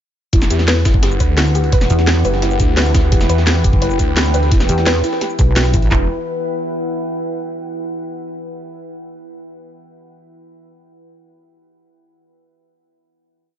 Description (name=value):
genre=dark technical drum and bass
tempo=172 BPM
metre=4/4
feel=straight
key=E minor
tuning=A4 = 441 Hz
part: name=dark analog pad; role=sustained chords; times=1.0-6.1 s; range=E4 to G5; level=-25 LUFS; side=right 1 dB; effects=chorus, phaser, sidechain pumping
part: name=soft round pluck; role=arpeggios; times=0.3-6.1 s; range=E4 to B4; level=-23 LUFS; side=left 1 dB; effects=lush chorus, vintage 12-bit sampler grit, sidechain pumping, ping-pong delay
part: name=phased detuned saw bass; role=bass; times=0.3-6.1 s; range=E1 to E2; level=-16 LUFS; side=equal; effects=phaser
part: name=breakbeat sampler-style drum kit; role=drums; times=0.3-5.9 s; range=hi-hat, snare drum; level=-27 LUFS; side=equal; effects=high-pass filter on hats, high-pass filter on snare, high-pass filter on room
part: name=drum and bass drum kit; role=drums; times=0.3-6.0 s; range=handclaps, kick drum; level=-15 LUFS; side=equal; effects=none
part: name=drum and bass drum kit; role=drums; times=0.3-5.8 s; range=hi-hat, shaker, snare drum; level=-20 LUFS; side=equal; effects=none
part: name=deep dark ambient pad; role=texture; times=1.1-7.3 s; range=E4 to G5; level=-25 LUFS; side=left 1 dB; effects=chorus, built-in reverb, sidechain pumping
part: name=pulsing pluck wobble bass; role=bass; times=1.9-2.2, 4.7-5.9 s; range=B1 to E2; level=-15 LUFS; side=equal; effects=chorus
room=little or no reverb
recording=nothing above 7.5 kHz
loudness=-13 LUFS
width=side -10 dB against mid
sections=0.3-5.9 drop; 5.9-7.3 final chord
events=drop 0.3-5.9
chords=0.3 Emadd9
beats=| 0.33 0.68 1.03 1.38 | 1.73 2.07 2.42 2.77 | 3.12 3.47 3.82 4.17 | 4.52 4.86 5.21 5.56 | 5.91 6.26 6.61 6.96